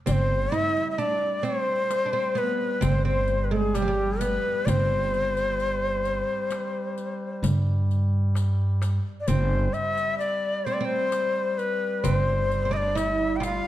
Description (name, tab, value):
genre	Turkish makam ensemble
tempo	130 BPM (eighths)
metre	10/8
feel	straight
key	G makam hicaz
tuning	A4 = 440 Hz
part	breathy bright ney	melody	0.1-13.7 s	G4 to G5	-26 LUFS	left 2 dB	none
part	oud	second line	0.1-13.7 s	F3 to F4	-31 LUFS	right 4 dB	none
part	upright bass	bass	0.1-13.6 s	G1 to G2	-26 LUFS	equal	none
part	clear duduk	drone	0.1-13.7 s	G3	-35 LUFS	left 1 dB	none
part	darbuka	percussion	0.1-13.6 s	none	-30 LUFS	right 1 dB	none
part	riq	percussion	0.1-13.6 s	none	-39 LUFS	left 6 dB	none
room	moderate recital hall reverb, RT60 1.5 s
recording	dark, warm production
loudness	-23 LUFS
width	side -13 dB against mid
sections	0.1-13.7 A section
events	none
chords	none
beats	| 0.07 0.53 0.99 1.45 1.91 2.37 2.83 3.29 3.75 4.21 | 4.67 5.13 5.59 6.05 6.51 6.97 7.43 7.89 8.35 8.81 | 9.27 9.73 10.19 10.65 11.11 11.57 12.03 12.49 12.96 13.42